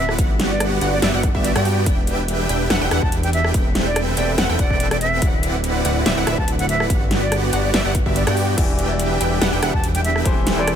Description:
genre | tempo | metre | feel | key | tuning
future bass | 143 BPM | 4/4 | swing 54% on 16ths, half-time | A dorian | A4 = 440 Hz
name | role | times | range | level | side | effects
jazz flute | melody | 0.0-10.7 s | D5 to A5 | -26 LUFS | right 1 dB | sidechain pumping, ping-pong delay
ethereal airy pad | sustained chords | 0.0-10.8 s | D3 to F#5 | -30 LUFS | right 1 dB | none
wide unison pluck | arpeggios | 0.0-10.8 s | E5 to G5 | -31 LUFS | right 1 dB | sidechain pumping
supersaw chords | riff | 0.0-10.8 s | B3 to G5 | -23 LUFS | right 1 dB | sidechain pumping
fat analog bass | bass | 0.0-10.8 s | D1 to G2 | -22 LUFS | equal | tube saturation, sidechain pumping
big-room dance drum kit | drums | 0.1-10.8 s | crash cymbal, hi-hat, rim click, snare drum | -24 LUFS | equal | none
electronic kick drum | drums | 0.2-10.3 s | none | -20 LUFS | equal | none
clear concert grand piano | accompaniment | 8.6-10.8 s | E3 to D5 | -26 LUFS | left 3 dB | sidechain pumping
room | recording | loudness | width
digital ambience | none | -16 LUFS | side -9 dB against mid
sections
0.0-10.8 A section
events
none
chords
0.2 Gmaj7; 1.9 Em7; 3.5 Am9/E; 5.2 D13; 6.9 Gmaj7; 8.6 Em7; 10.3 Am9/E

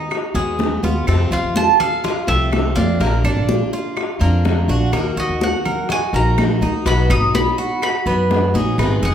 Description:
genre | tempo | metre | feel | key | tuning
latin, Cuban son and guajira | 124 BPM | 4/4 | straight | unclear | A4 = 438 Hz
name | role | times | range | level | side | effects
bowl-back mandolin | melody | 0.0-9.1 s | Eb5 to D#6 | -21 LUFS | right 3 dB | none
picked plugged-in steel-string acoustic guitar | accompaniment | 0.0-9.1 s | B2 to Ab4 | -25 LUFS | left 2 dB | none
Cuban tres | arpeggios | 0.0-9.1 s | Ab3 to Cb5 | -24 LUFS | right 2 dB | none
bongos | percussion | 0.1-9.0 s | none | -24 LUFS | left 3 dB | none
claves | percussion | 0.1-9.0 s | none | -30 LUFS | right 2 dB | none
congas | percussion | 0.1-9.1 s | none | -25 LUFS | equal | none
upright bass | bass | 0.3-9.1 s | F1 to F#2 | -18 LUFS | equal | none
room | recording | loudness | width
wet large studio reverb, RT60 0.9 s | band playing live in one room | -15 LUFS | side -9 dB against mid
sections
0.0-9.1 A section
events
none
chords
0.0 Abm7/Eb; 1.1 F; 3.0 Bb; 4.9 Ebm; 6.9 B

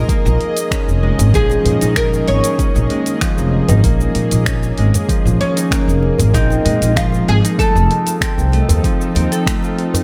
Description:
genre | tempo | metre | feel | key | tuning
organic downtempo | 96 BPM | 4/4 | straight | Bb minor | A4 = 440 Hz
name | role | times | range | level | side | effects
oud | melody | 0.0-9.4 s | Db4 to Db5 | -23 LUFS | equal | digital delay
bowed-like drone | sustained chords | 0.0-10.0 s | Eb3 to Eb5 | -27 LUFS | equal | built-in reverb, sidechain pumping
concert harp | arpeggios | 0.0-10.0 s | F3 to A4 | -22 LUFS | equal | digital delay
afro-pop drum kit | drums | 0.1-10.0 s | cabasa, finger snaps, hi-hat | -26 LUFS | equal | none
electronic kick drum | drums | 0.1-9.6 s | none | -21 LUFS | equal | none
upright bass | bass | 0.3-9.3 s | F1 to Bb2 | -18 LUFS | equal | none
djembe | percussion | 0.4-10.0 s | none | -26 LUFS | equal | none
room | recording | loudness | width
light reverb, small room ambience | none | -15 LUFS | mono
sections
0.0-10.0 A section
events
none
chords
0.1 Bbm7; 7.6 F7

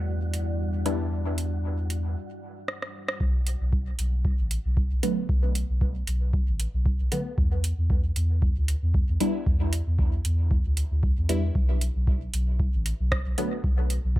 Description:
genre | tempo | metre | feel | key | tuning
dub techno | 115 BPM | 4/4 | swing 54% on 16ths | unclear | A4 = 440 Hz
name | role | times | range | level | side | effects
deep dark ambient pad | sustained chords | 0.0-2.1 s | G3 to D5 | -37 LUFS | left 2 dB | chorus, built-in reverb, sidechain pumping
soft dub sub bass | bass | 0.0-14.2 s | A1 to E2 | -26 LUFS | equal | sidechain pumping
wind-like tuned noise texture | texture | 0.0-2.2 s | F#4 | -45 LUFS | right 3 dB | built-in reverb, sidechain pumping
booming analog drum machine | drums | 0.3-14.0 s | hi-hat, rim click | -32 LUFS | right 2 dB | none
filtered dub chord stab | stabs | 0.9-1.0, 5.0-13.5 s | D3 to E4 | -30 LUFS | equal | phaser, sidechain pumping, dub echo
electronic kick drum | drums | 3.2-14.2 s | none | -25 LUFS | equal | none
room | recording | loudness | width
little or no reverb | none | -23 LUFS | side -16 dB against mid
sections
0.0-3.2 A section; 3.2-14.2 B section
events
break 2.2-3.2; drum fill 2.7-3.2; filter sweep on synth stab 3.2-14.2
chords
0.0 Em7; 3.2 B7(no3); 7.4 E7(no3); 11.6 N.C.

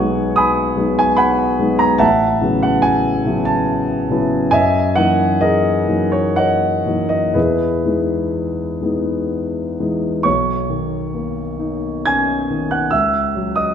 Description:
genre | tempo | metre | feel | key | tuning
classical, impressionist solo piano | 58-74 BPM | 3/4 | rubato | B major | A4 = 441 Hz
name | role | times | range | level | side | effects
warm concert grand piano | solo | 0.0-13.7 s | A1 to G#6 | -15 LUFS | equal | none
room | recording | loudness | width
moderate scoring stage reverb, RT60 1.5 s | faint mains hum | -15 LUFS | side -8 dB against mid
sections
0.0-10.3 A section; 10.3-13.7 A section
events
none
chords
0.0 B69; 2.0 A69; 4.5 F#13; 7.4 Emaj7; 10.3 Bmaj9; 12.9 C#madd9

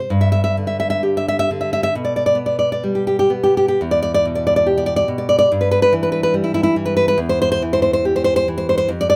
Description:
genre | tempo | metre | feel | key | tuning
romantic piece for solo classical guitar | 59-73 BPM | 2/4 | rubato | G major | A4 = 440 Hz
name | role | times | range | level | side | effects
nylon-string guitar | solo | 0.0-9.2 s | E2 to E5 | -17 LUFS | equal | none
room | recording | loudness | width
light reverb | none | -17 LUFS | mono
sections
0.1-9.2 A section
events
none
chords
0.1 G5; 1.9 G/B; 3.8 Em; 5.5 Em/G; 7.2 C/E

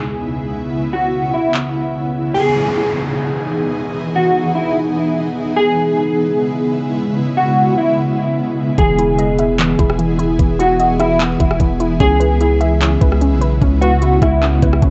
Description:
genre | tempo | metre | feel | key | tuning
hip hop, atmospheric cloud-rap | 149 BPM | 4/4 | half-time | E major | A4 = 440 Hz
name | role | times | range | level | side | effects
mellow electric guitar | melody | 0.0-14.4 s | E4 to G#4 | -20 LUFS | equal | analog chorus, low-pass filter, cassette tape, tape echo
ethereal airy pad | sustained chords | 0.0-14.9 s | C#2 to G#4 | -21 LUFS | equal | ensemble chorus, built-in reverb, tremolo, sidechain pumping, low-pass filter, cassette tape
trap drum kit | drums | 1.5-1.6, 8.8-14.9 s | handclaps, hi-hat, kick drum, rim click | -19 LUFS | equal | none
downlifter | sound effects | 2.3-5.6 s | none | -30 LUFS | equal | none
warbly dusty pluck | arpeggios | 8.8-14.9 s | E3 to E5 | -23 LUFS | equal | chorus, cassette tape, tape echo
long sustained 808-style bass | bass | 8.8-14.9 s | E1 to C#2 | -20 LUFS | equal | tube saturation
room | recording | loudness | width
light reverb, digital ambience | home recording on cassette, nothing above 8.0 kHz | -16 LUFS | mono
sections
0.0-2.3 A section; 2.3-14.9 B section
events
kick muted 1.5-2.3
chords
0.0 C#m7; 2.3 Emaj7; 5.6 C#m7; 8.8 Emaj7; 12.0 C#m7

